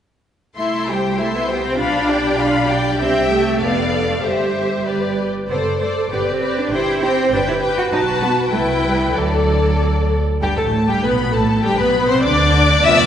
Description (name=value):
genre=quick classical-period movement for string orchestra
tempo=98 BPM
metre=2/4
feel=rubato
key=C major, G major from 5.5 s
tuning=A4 = 441 Hz
part: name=rich studio violin section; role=melody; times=0.6-13.1 s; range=D5 to E6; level=-23 LUFS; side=left 4 dB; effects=none
part: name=rich studio violin section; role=second line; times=0.6-13.1 s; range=G4 to F5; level=-20 LUFS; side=left 2 dB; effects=none
part: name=rich studio viola section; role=accompaniment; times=0.6-13.1 s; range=F3 to A4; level=-21 LUFS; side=equal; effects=none
part: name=rich studio double bass section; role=bass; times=0.6-13.1 s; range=F1 to D2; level=-23 LUFS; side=right 1 dB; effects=none
part: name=warm studio cello section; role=bass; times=0.6-13.1 s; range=F2 to F#4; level=-22 LUFS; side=right 2 dB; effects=none
room=wet concert hall reverb, RT60 1.7 s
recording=recorded in a church or concert hall, nothing above 10.9 kHz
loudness=-15 LUFS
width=side -9 dB against mid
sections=0.6-10.4 A section; 10.4-13.1 B section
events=none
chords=0.6 C; 1.8 G7/B; 3.0 C; 3.6 Dm/F; 4.2 C/G; 5.5 D7/F#; 6.1 G; 6.7 C/G; 7.3 G; 7.9 B7; 8.5 Cmaj7; 9.1 D; 10.4 Gsus2; 11.0 Asus2; 11.6 G; 12.2 N.C.